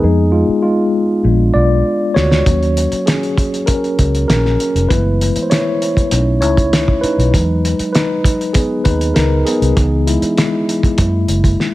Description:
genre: lush 1970s-style soul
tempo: 99 BPM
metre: 4/4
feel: straight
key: unclear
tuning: A4 = 441 Hz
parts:
  - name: mellow tine electric piano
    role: accompaniment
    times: 0.0-11.7 s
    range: E3 to D5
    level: -15 LUFS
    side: left 1 dB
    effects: slow stereo tremolo
  - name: vintage muted fingered electric bass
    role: bass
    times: 0.0-11.5 s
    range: E#1 to F#2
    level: -15 LUFS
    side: equal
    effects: none
  - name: cloth-damped thuddy drum kit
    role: drums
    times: 2.2-11.7 s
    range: hi-hat, kick drum, snare drum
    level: -16 LUFS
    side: equal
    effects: none
room: small room ambience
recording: none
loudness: -12 LUFS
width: side -17 dB against mid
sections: 0.0-11.7 A section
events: tine electric piano solo 0.0-11.7; drum fill 1.9-2.5, 11.6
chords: 0.0 Fm7b5; 1.2 A#7b9; 2.5 D#m7; 4.9 F#m11; 6.1 B9; 7.3 Emaj9; 9.8 C#m9; 11.0 F#7

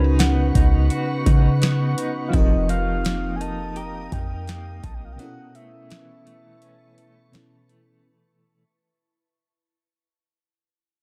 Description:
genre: contemporary R&B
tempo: 84 BPM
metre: 4/4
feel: swing 58% on 16ths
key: unclear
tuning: A4 = 441 Hz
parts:
  - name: soft octave-layered synth lead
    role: melody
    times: 0.0-7.7 s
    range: Eb5 to Cb6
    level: -36 LUFS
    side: equal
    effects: chorus, digital delay
  - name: FM electric piano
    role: accompaniment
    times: 0.0-8.1 s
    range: B2 to Cb5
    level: -30 LUFS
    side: equal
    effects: chorus
  - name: glassy FM pad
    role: sustained chords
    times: 0.0-8.0 s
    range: E4 to Eb6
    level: -37 LUFS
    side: equal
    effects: ensemble chorus, built-in reverb
  - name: direct-recorded clean electric guitar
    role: arpeggios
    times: 0.0-8.6 s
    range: B2 to G4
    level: -33 LUFS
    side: equal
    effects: tremolo, digital delay
  - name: warm 808-style bass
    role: bass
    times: 0.0-5.2 s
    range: F1 to Db3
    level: -24 LUFS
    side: equal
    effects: none
  - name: booming analog drum machine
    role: drums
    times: 0.2-7.9 s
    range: hi-hat, kick drum, snare drum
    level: -23 LUFS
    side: equal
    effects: none
  - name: mellow tine electric piano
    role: texture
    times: 0.2-5.5 s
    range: Eb5 to Gb5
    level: -39 LUFS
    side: equal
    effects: digital delay
room: little or no reverb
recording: none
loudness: -21 LUFS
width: mono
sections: 0.0-8.0 A section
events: fade-out 0.0-8.0; break 5.2-8.0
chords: 0.0 Db9sus4; 2.3 F9sus4; 5.2 B9sus4

